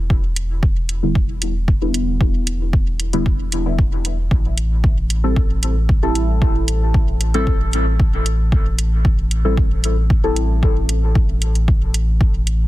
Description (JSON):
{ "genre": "dub techno", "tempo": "114 BPM", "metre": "4/4", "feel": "straight", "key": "unclear", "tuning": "A4 = 441 Hz", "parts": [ { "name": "soft dub sub bass", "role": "bass", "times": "0.0-12.7 s", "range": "E1 to A1", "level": "-19 LUFS", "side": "equal", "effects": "sidechain pumping" }, { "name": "electronic kick drum", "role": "drums", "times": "0.1-12.3 s", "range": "none", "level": "-17 LUFS", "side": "equal", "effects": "overdrive" }, { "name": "electronic hi-hat", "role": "drums", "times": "0.4-12.6 s", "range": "none", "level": "-25 LUFS", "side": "right 2 dB", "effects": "none" }, { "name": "deep mellow chord stab", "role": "stabs", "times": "1.0-11.5 s", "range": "D3 to A4", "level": "-23 LUFS", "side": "left 1 dB", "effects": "chorus, phaser, sidechain pumping, dub echo" } ], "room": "little or no reverb", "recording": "dense, heavily limited modern master", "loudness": "-15 LUFS", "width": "side -16 dB against mid", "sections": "0.0-12.7 A section", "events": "none", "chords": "0.0 Em7; 4.3 Am7", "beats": "| 0.10 0.63 1.15 1.68 | 2.21 2.73 3.26 3.79 | 4.31 4.84 5.36 5.89 | 6.42 6.94 7.47 8.00 | 8.52 9.05 9.57 10.10 | 10.63 11.15 11.68 12.21" }